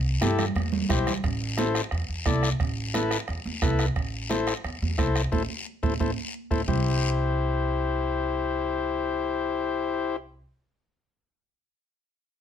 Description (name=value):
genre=latin, cumbia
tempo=176 BPM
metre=4/4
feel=straight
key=C major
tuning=A4 = 440 Hz
part: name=upright bass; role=bass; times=0.0-10.4 s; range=A1 to G2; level=-29 LUFS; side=right 1 dB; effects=none
part: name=combo organ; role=accompaniment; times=0.2-10.2 s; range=E4 to D5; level=-27 LUFS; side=left 5 dB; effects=none
part: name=bombo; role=percussion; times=0.2-6.8 s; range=none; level=-30 LUFS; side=right 3 dB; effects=none
part: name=congas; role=percussion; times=0.2-6.8 s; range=none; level=-32 LUFS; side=right 5 dB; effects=none
part: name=guiro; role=percussion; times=0.2-6.8 s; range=none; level=-36 LUFS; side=left 5 dB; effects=none
room=light reverb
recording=close, detailed microphones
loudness=-24 LUFS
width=side -9 dB against mid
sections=0.0-1.2 A section; 1.2-6.7 B section; 6.7-9.4 C section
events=drum fill 0.6-1.2; band accent 5.3-6.7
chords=0.0 C; 1.2 Am; 6.7 C